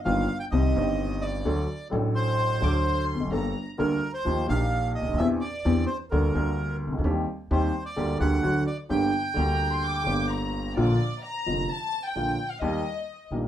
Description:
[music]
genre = tango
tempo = 129 BPM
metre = 4/4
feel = rubato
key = G minor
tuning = A4 = 442 Hz
[part]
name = bandoneon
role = melody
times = 0.0-10.3 s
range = Bb4 to G5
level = -30 LUFS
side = right 2 dB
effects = none
[part]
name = warm upright piano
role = accompaniment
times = 0.0-13.5 s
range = F1 to Bb4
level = -26 LUFS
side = equal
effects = none
[part]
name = upright bass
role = bass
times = 0.1-13.5 s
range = E1 to E2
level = -29 LUFS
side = equal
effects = none
[part]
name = warm studio violin section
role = second line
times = 2.6-3.7, 9.4-13.3 s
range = D5 to D6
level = -32 LUFS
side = left 2 dB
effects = none
[sound]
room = wet studio ambience, RT60 0.5 s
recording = band playing live in one room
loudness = -24 LUFS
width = side -11 dB against mid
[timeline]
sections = 0.0-10.8 A section; 10.8-13.5 B section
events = violin section solo 10.8-13.5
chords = 0.0 Ebadd9/G; 0.5 Cm; 1.5 D; 3.3 Gmadd9; 4.3 Ebadd9; 5.2 Cadd9/E; 6.1 Gmadd9/D; 7.0 Cm/Eb; 8.0 Gm/D; 8.4 D; 8.9 Gm; 10.8 Bb; 12.6 Eb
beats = 0.06 0.53 0.99 | 1.46 1.93 2.39 2.86 | 3.33 3.79 4.26 4.73 | 5.19 5.66 6.12 6.58 | 7.05 7.51 7.97 8.44 | 8.90 9.37 9.83 10.30 | 10.77 11.23 11.70 12.16 | 12.62 13.09

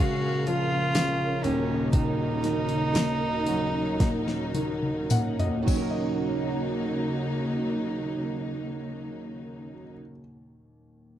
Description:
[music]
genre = pop ballad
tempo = 50-63 BPM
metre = 4/4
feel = straight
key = Eb minor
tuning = A4 = 440 Hz
[part]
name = warm cello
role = melody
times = 0.0-5.1 s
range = Db4 to Gb4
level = -29 LUFS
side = right 3 dB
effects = none
[part]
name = clear concert grand piano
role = accompaniment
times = 0.0-11.2 s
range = Eb1 to Gb5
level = -31 LUFS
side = left 3 dB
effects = none
[part]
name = warm studio string section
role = sustained chords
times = 0.0-9.9 s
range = Db3 to F5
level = -30 LUFS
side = equal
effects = none
[part]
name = flamenco guitar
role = arpeggios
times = 0.0-10.1 s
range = Eb3 to Bb4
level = -35 LUFS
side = right 13 dB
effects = none
[part]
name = smooth R&B drum kit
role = drums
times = 0.5-5.9 s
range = crash cymbal, hi-hat, kick drum, snare drum, toms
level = -26 LUFS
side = equal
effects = none
[part]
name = tambourine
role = percussion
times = 1.0-6.8 s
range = none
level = -40 LUFS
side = left 12 dB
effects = none
[sound]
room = little or no reverb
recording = dry, close 1970s-style studio recording, lossy compression artefacts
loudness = -24 LUFS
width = side -11 dB against mid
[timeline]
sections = 0.0-6.3 A section; 6.3-11.0 B section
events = slowing down 0.0-6.3; drum fill 4.0-6.3; grand piano fill 4.5-6.3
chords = 0.0 Bbm7; 1.4 Ebm7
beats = 0.00 0.95 | 1.93 2.95 4.00 5.10 | 6.26 7.44 8.63 9.82

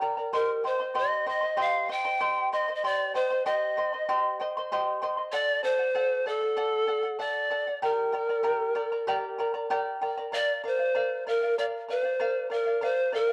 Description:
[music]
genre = andean folk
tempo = 96 BPM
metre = 4/4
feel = straight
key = unclear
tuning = A4 = 435 Hz
[part]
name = charango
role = accompaniment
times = 0.0-13.3 s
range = G4 to C6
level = -32 LUFS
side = equal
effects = none
[part]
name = breathy pan flute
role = melody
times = 0.3-13.3 s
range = A4 to G5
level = -29 LUFS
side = equal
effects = none
[sound]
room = wet spring reverb, RT60 1.4 s, studio reverb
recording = home recording on cassette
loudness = -28 LUFS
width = mono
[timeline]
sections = 0.0-10.3 A section; 10.3-13.3 A section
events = none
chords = 0.3 Cm; 5.3 D; 7.8 Gm; 10.3 Bb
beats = | 0.34 0.96 1.59 2.21 | 2.83 3.46 4.08 4.71 | 5.33 5.96 6.58 7.21 | 7.83 8.46 9.08 9.71 | 10.33 10.95 11.58 12.20 | 12.82

